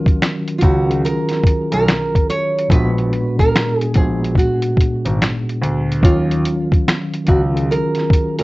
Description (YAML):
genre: lo-fi hip hop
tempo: 72 BPM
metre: 4/4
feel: swing 64% on 16ths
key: Eb minor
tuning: A4 = 440 Hz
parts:
  - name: nylon-string guitar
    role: melody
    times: 0.0-8.4 s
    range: F4 to Db5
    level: -20 LUFS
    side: right 2 dB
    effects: none
  - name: mellow tine electric piano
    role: accompaniment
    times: 0.0-8.4 s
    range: Bb2 to Bb4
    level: -20 LUFS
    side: equal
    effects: medium stereo tremolo
  - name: lo-fi sampler-style drum kit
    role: drums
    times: 0.1-8.4 s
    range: finger snaps, hi-hat, kick drum, snare drum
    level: -15 LUFS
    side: equal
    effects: none
  - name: dark concert grand piano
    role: bass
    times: 0.6-8.4 s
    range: Ab1 to Eb2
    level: -20 LUFS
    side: equal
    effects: none
room: light reverb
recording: worn, warbling old tape, cassette tape, warbly pitch drift, nothing above 7.8 kHz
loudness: -14 LUFS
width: side -21 dB against mid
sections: 0.0-8.4 A section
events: none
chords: 0.0 Ebm9; 2.7 Bb7b9b13; 6.0 Ebm9